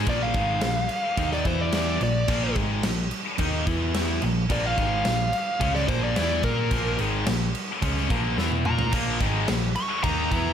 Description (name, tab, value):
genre	hard rock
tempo	108 BPM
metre	4/4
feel	straight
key	unclear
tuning	A4 = 440 Hz
part	sludgy distorted guitar	riff	0.0-10.5 s	Ab2 to Bb4	-31 LUFS	right 12 dB	overdrive
part	tight distorted guitar	riff	0.0-10.5 s	Ab2 to Bb4	-29 LUFS	left 12 dB	distortion
part	hollow-body short-scale picked electric bass	bass	0.0-10.5 s	Ab1 to Bb2	-28 LUFS	equal	none
part	dark smooth lead guitar	melody	0.1-10.5 s	Bb4 to Db6	-28 LUFS	equal	overdrive, slapback echo
part	big rock drum kit	drums	0.1-10.4 s	crash cymbal, kick drum, snare drum, toms	-28 LUFS	equal	none
part	heavy high-gain guitar	riff	8.9-10.5 s	Ab2 to E4	-30 LUFS	left 1 dB	distortion
room	small room ambience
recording	none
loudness	-22 LUFS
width	side -8 dB against mid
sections	0.1-10.5 A section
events	lead electric guitar solo 0.1-10.5; drum fill 8.4-8.9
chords	0.1 Bb5; 1.5 E5; 2.0 Bb; 3.7 E5; 4.2 Bb5